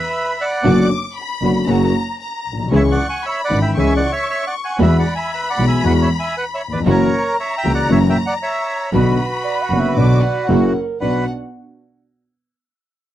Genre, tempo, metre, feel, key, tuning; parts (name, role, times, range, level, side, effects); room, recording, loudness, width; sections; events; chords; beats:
tango; 116 BPM; 4/4; rubato; B minor; A4 = 440 Hz
bandoneon; melody; 0.0-11.2 s; F#4 to G#5; -21 LUFS; right 2 dB
rich studio violin section; second line; 0.0-11.2 s; F#5 to D6; -25 LUFS; left 3 dB
warm concert grand piano; accompaniment; 0.6-11.2 s; F#1 to G#4; -17 LUFS; left 4 dB
muted studio string section; stabs; 0.6-11.2 s; G#3 to F#4; -25 LUFS; right 5 dB
warm double bass; bass; 0.7-11.2 s; F#1 to E2; -18 LUFS; right 2 dB
mellow clarinet; second line; 9.4-11.2 s; A#4 to F#5; -23 LUFS; right 8 dB
little or no reverb; dry, close 1970s-style studio recording; -15 LUFS; side -12 dB against mid
0.0-11.0 A section; 11.0-13.1 B section
0.0 E5; 0.6 Bm/F#; 1.7 F#; 2.7 C#m; 4.8 Eadd9; 6.9 F#7; 8.9 Bm; 10.5 F#7; 11.0 Bm
0.13 | 0.65 1.16 1.68 2.20 | 2.72 3.24 3.76 4.28 | 4.80 5.31 5.83 6.35 | 6.86 7.38 7.90 8.41 | 8.93 9.45 9.97 10.49 | 11.01